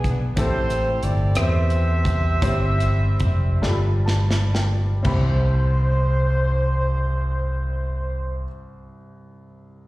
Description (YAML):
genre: slow gospel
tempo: 37-62 BPM (dotted quarters)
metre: 6/8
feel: straight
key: C major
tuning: A4 = 440 Hz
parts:
  - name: mellow horn section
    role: melody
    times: 0.0-8.5 s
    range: B3 to E5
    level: -27 LUFS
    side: right 1 dB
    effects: slapback echo
  - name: clear baby grand piano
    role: accompaniment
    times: 0.0-9.9 s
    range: C2 to B5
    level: -30 LUFS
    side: left 1 dB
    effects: slapback echo
  - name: fingered electric bass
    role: bass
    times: 0.0-8.4 s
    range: F1 to E2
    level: -20 LUFS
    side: equal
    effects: none
  - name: modern studio drum kit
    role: drums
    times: 0.0-5.3 s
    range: china cymbal, hi-hat, kick drum, rim click, snare drum, toms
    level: -26 LUFS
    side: equal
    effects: none
room: small room ambience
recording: live gig heard through the venue's PA, recital hall reverb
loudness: -18 LUFS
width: side -18 dB against mid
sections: 0.0-5.1 A section; 5.1-9.9 B section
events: slowing down 0.4-5.1; drum fill 3.6-5.1; grand piano fill 3.6-5.1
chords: 0.4 Am7; 2.4 C/G; 3.6 G7; 5.1 Cmaj7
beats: | 0.37 1.36 | 2.42 3.62 | 5.05 6.66 | 8.26 9.87